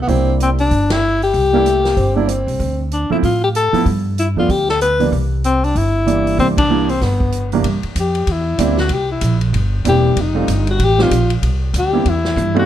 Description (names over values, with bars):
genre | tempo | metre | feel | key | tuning
jazz, small-group swing and bop | 190 BPM | 4/4 | swing 61% on 8ths | C mixolydian | A4 = 440 Hz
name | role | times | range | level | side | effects
breathy tenor saxophone | second line | 0.0-2.9 s | A3 to D4 | -22 LUFS | right 2 dB | none
upright bass | bass | 0.0-12.7 s | E1 to A2 | -18 LUFS | equal | none
warm concert grand piano | accompaniment | 0.1-12.7 s | C2 to G4 | -19 LUFS | right 5 dB | none
swinging big-band drum kit | drums | 0.1-12.6 s | hi-hat, kick drum, ride cymbal, snare drum, toms | -24 LUFS | equal | none
clear alto saxophone | melody | 0.4-12.7 s | B3 to B4 | -17 LUFS | left 3 dB | none
room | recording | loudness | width
light reverb | dark, warm production | -14 LUFS | side -11 dB against mid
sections
0.0-7.6 A section; 7.6-12.7 B section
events
band accent 0.9, 6.5; alto saxophone solo 7.6-12.7; drum fill 12.4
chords
0.1 C7; 2.6 Dm7; 3.9 G7; 5.1 C7; 10.2 F7; 11.4 C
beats
| 0.08 0.40 0.71 1.02 | 1.34 1.65 1.97 2.28 | 2.60 2.91 3.23 3.54 | 3.86 4.17 4.49 4.80 | 5.12 5.43 5.75 6.07 | 6.38 6.70 7.01 7.33 | 7.64 7.96 8.27 8.59 | 8.90 9.22 9.53 9.85 | 10.16 10.48 10.80 11.11 | 11.43 11.74 12.06 12.38